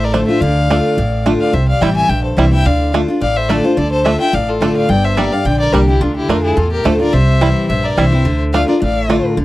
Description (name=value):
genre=bluegrass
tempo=214 BPM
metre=4/4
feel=swing 54% on 8ths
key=D minor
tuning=A4 = 440 Hz
part: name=dark fiddle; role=melody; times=0.0-9.2 s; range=F4 to G#5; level=-19 LUFS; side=left 1 dB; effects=none
part: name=clear fiddle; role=second line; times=0.0-9.2 s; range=D4 to E5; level=-23 LUFS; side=left 4 dB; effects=tape echo
part: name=picked steel-string acoustic guitar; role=accompaniment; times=0.0-9.4 s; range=G2 to G4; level=-16 LUFS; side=left 1 dB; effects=none
part: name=upright bass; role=bass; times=0.0-9.4 s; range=G1 to F2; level=-16 LUFS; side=right 1 dB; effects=none
part: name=bluegrass banjo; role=melody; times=0.1-9.2 s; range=G3 to E4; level=-16 LUFS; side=right 5 dB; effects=none
room=little or no reverb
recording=dry, close 1970s-style studio recording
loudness=-12 LUFS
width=side -16 dB against mid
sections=0.0-9.4 A section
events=none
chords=0.0 Dm; 1.5 C; 2.7 Dm; 4.9 Gm; 6.0 Dm; 7.1 C; 8.3 Dm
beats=0.13 | 0.41 0.69 0.97 1.25 | 1.53 1.81 2.09 2.37 | 2.65 2.93 3.21 3.49 | 3.77 4.05 4.33 4.61 | 4.89 5.17 5.45 5.73 | 6.01 6.29 6.57 6.85 | 7.13 7.41 7.69 7.97 | 8.25 8.53 8.81 9.09 | 9.37